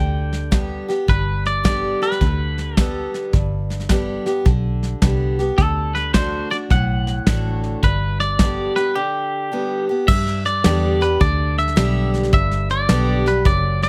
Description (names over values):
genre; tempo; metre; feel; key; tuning
honky-tonk and classic country; 107 BPM; 4/4; swing 66% on 8ths; G major; A4 = 439 Hz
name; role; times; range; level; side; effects
twangy electric guitar; melody; 0.0-13.9 s; G4 to G5; -25 LUFS; equal; none
picked steel-string acoustic guitar; accompaniment; 0.0-13.9 s; F#2 to G4; -26 LUFS; equal; none
vintage muted fingered electric bass; bass; 0.0-13.9 s; F#1 to G2; -24 LUFS; equal; none
soft brush drum kit; drums; 0.3-13.9 s; crash cymbal, hi-hat, kick drum, snare drum; -21 LUFS; equal; none
room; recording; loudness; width
little or no reverb; close, detailed microphones; -19 LUFS; mono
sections
0.0-10.1 A section; 10.1-13.9 B section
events
break 9.0-10.1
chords
0.0 G; 5.6 D; 7.8 G